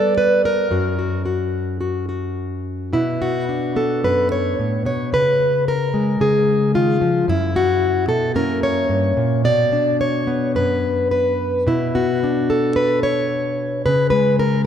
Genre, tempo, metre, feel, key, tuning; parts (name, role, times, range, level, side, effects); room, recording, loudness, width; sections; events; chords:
folk, solo fingerstyle acoustic guitar; 110 BPM; 4/4; rubato; B minor; A4 = 440 Hz
fingerpicked plugged-in steel-string acoustic guitar; solo; 0.0-14.7 s; F#2 to D5; -16 LUFS; left 1 dB
moderate concert hall reverb, RT60 2.2 s; -16 LUFS; side -9 dB against mid
0.0-2.9 A section; 2.9-11.7 B section; 11.7-14.7 B section
0.0 G; 0.7 N.C.; 2.9 Bmadd9; 5.1 C#7; 7.3 F#7sus4; 8.3 F#7; 9.4 Bm; 11.7 Bmadd9; 13.9 C#5